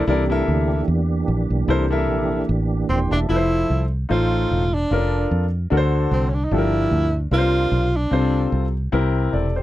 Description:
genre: uptempo gospel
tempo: 149 BPM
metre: 4/4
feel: swing 55% on 8ths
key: unclear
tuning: A4 = 441 Hz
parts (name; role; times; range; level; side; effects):
- tonewheel organ; sustained chords; 0.0-3.3 s; E3 to G4; -24 LUFS; right 4 dB; slow rotary speaker, chorus vibrato
- clear grand piano; accompaniment; 0.1-9.6 s; G2 to C6; -22 LUFS; left 3 dB; none
- fingered electric bass; bass; 0.1-9.6 s; Eb1 to F2; -21 LUFS; equal; none
- breathy tenor saxophone; melody; 2.9-8.5 s; C4 to F4; -22 LUFS; right 1 dB; none
room: little or no reverb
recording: dry, close 1970s-style studio recording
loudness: -18 LUFS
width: side -15 dB against mid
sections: 0.1-3.3 A section; 3.3-9.6 B section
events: none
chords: 0.1 C13; 3.3 Fmaj7; 4.1 F7/A; 4.9 Bbmaj7/F; 5.7 D7; 6.5 Gm7; 7.3 C9sus4; 8.1 F/C; 8.9 C7

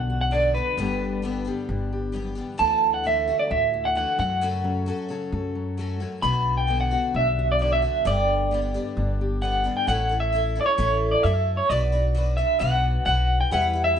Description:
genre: indie folk with a building arrangement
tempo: 132 BPM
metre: 4/4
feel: straight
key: unclear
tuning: A4 = 442 Hz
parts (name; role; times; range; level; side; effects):
- electric guitar through a small old amp; melody; 0.0-14.0 s; B4 to B5; -22 LUFS; right 1 dB; tremolo, slapback echo
- fingerpicked steel-string acoustic guitar; accompaniment; 0.0-9.9 s; D2 to A4; -32 LUFS; left 4 dB; none
- picked twelve-string acoustic guitar; accompaniment; 0.0-14.0 s; F#2 to B4; -33 LUFS; left 3 dB; none
- upright bass; bass; 0.0-14.0 s; G1 to F#2; -26 LUFS; equal; none
- dark upright piano; accompaniment; 13.5-14.0 s; E2 to E5; -31 LUFS; right 4 dB; none
room: light reverb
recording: rough home demo mix, nothing above 10.3 kHz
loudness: -21 LUFS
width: side -8 dB against mid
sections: 0.0-9.9 A section; 9.9-14.0 B section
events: none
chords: 0.0 Bm; 0.8 G; 2.6 Dadd9; 4.2 F#m; 6.2 Bm; 8.1 G; 9.9 A; 11.7 Bm

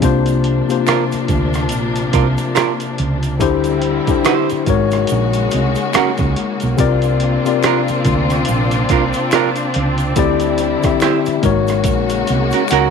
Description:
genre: R&B, neo-soul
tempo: 71 BPM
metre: 4/4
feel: swing 59% on 16ths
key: unclear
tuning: A4 = 440 Hz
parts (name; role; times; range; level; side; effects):
- mellow tine electric piano; accompaniment; 0.0-12.9 s; C3 to E5; -18 LUFS; left 9 dB; none
- warm studio string section; sustained chords; 0.0-12.9 s; C3 to Gb4; -21 LUFS; left 1 dB; none
- hollow-body short-scale fingered electric bass; bass; 0.0-12.9 s; Ab1 to D2; -19 LUFS; right 2 dB; none
- boom bap sampler-style drum kit; drums; 0.0-12.9 s; hi-hat, kick drum, rim click; -21 LUFS; right 2 dB; none
- egg shaker and finger snaps; percussion; 0.0-12.9 s; none; -34 LUFS; left 2 dB; none
- archtop guitar, miked and amplified; second line; 0.9-12.9 s; Db4 to D5; -18 LUFS; right 16 dB; none
room: light reverb, digital ambience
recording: 1960s-style stereo with parts hard left and right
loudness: -14 LUFS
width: side -6 dB against mid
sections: 0.0-12.9 A section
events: drum fill 11.9-12.9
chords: 0.0 C9sus4; 3.4 D9sus4; 4.7 Ab9sus4; 6.8 C9sus4; 10.2 D9sus4; 11.4 Ab9sus4

